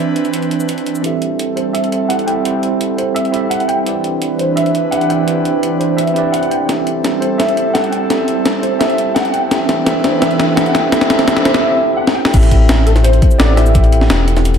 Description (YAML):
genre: liquid drum and bass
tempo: 170 BPM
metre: 4/4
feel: straight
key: A dorian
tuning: A4 = 442 Hz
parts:
  - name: dark concert grand piano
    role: melody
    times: 0.0-14.2 s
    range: A4 to G5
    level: -19 LUFS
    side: left 1 dB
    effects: ensemble chorus, low-pass filter, ping-pong delay
  - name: tine electric piano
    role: accompaniment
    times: 0.0-14.6 s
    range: C4 to G5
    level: -18 LUFS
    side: right 1 dB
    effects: medium stereo tremolo, ping-pong delay
  - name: airy breathy pad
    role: sustained chords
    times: 0.0-11.6 s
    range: E3 to B4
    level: -19 LUFS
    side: right 3 dB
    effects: chorus
  - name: breakbeat sampler-style drum kit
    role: drums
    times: 0.2-14.6 s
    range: cabasa, crash cymbal, hi-hat, snare drum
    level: -18 LUFS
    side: left 1 dB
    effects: none
  - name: sub bass with octave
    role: bass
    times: 1.0-14.6 s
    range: E1 to E2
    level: -11 LUFS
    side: left 1 dB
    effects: high-pass filter
  - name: electronic kick drum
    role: drums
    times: 12.3-13.8 s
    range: none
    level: -11 LUFS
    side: left 1 dB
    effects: overdrive
room: wet plate reverb, RT60 1.8 s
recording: dreamy mix soaked in reverb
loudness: -12 LUFS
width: side -7 dB against mid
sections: 0.0-1.0 A section; 1.0-12.3 B section; 12.3-14.6 C section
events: build-up 1.0-12.3; filter sweep on analog synth pad 1.0-12.3; filter sweep on grand piano 1.0-12.3; drum fill 6.7-11.6, 12.1; drop 12.3-14.6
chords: 0.0 Cmaj9; 1.0 Am7; 3.9 Cmaj9; 6.7 Am7; 9.5 Cmaj9; 12.3 Am7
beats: 0.34 0.69 | 1.04 1.40 1.75 2.10 | 2.46 2.81 3.16 3.51 | 3.87 4.22 4.57 4.92 | 5.28 5.63 5.98 6.34 | 6.69 7.04 7.40 7.75 | 8.10 8.46 8.81 9.16 | 9.51 9.87 10.22 10.57 | 10.93 11.28 11.63 11.98 | 12.34 12.69 13.04 13.40 | 13.75 14.10 14.46